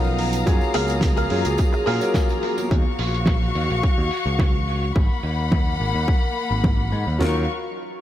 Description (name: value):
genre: nu-disco, nu disco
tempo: 107 BPM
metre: 4/4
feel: straight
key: Eb minor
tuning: A4 = 440 Hz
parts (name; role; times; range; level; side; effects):
- bright concert grand piano; accompaniment; 0.0-2.7, 7.2-7.4 s; F3 to Bb4; -26 LUFS; equal; sidechain pumping, diffuse ambient delay
- muted studio string section; sustained chords; 0.0-7.5 s; Bb3 to Eb6; -26 LUFS; left 2 dB; sidechain pumping
- direct-recorded clean electric guitar; riff; 0.0-2.4 s; Ab4 to F5; -30 LUFS; left 2 dB; wide subtle chorus, diffuse ambient delay
- picked electric bass; bass; 0.0-7.5 s; Ab1 to Bb2; -24 LUFS; equal; none
- tambourine and congas; percussion; 0.0-2.7 s; none; -36 LUFS; right 4 dB; none
- damped 70s drum kit; drums; 0.2-7.2 s; hi-hat, snare drum; -28 LUFS; right 1 dB; low-pass filter on hats, low-pass filter on snare, low-pass filter on room
- house drum kit; drums; 0.5-7.3 s; kick drum, snare drum, toms; -20 LUFS; equal; overdrive
room: moderate lush hall reverb, RT60 2.8 s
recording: dreamy mix soaked in reverb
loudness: -19 LUFS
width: side -12 dB against mid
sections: 0.0-7.2 A section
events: filter sweep on drum 0.0-7.2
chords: 0.5 Gbmaj9; 2.7 Ebm9; 5.0 Abm9; 7.2 Ebm9